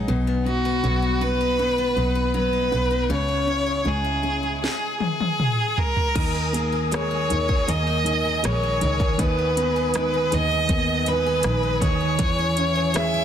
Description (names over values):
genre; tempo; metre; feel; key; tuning
pop ballad; 79 BPM; 4/4; straight; unclear; A4 = 443 Hz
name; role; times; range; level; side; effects
felt-muted upright piano; accompaniment; 0.0-13.2 s; D#3 to G#4; -27 LUFS; equal; none
picked steel-string acoustic guitar; arpeggios; 0.0-13.2 s; B2 to B4; -31 LUFS; left 4 dB; tape echo
warm double bass; bass; 0.0-13.2 s; A#1 to E2; -26 LUFS; equal; none
bright violin; melody; 0.5-13.2 s; F#4 to E5; -23 LUFS; right 1 dB; none
house drum kit; drums; 4.6-13.1 s; crash cymbal, hi-hat, kick drum, rim click, snare drum, toms; -26 LUFS; equal; soft clipping on snare
percussive tonewheel organ; sustained chords; 6.1-13.2 s; A#4 to D#6; -30 LUFS; equal; fast rotary speaker
room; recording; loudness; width
light reverb; dense, heavily limited modern master; -20 LUFS; side -9 dB against mid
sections
0.0-6.2 A section; 6.2-13.2 B section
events
drum fill 4.6-6.2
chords
0.1 B; 3.1 C#m; 4.6 N.C.; 6.2 D#sus4; 9.2 G#m/D#; 12.2 C#m/E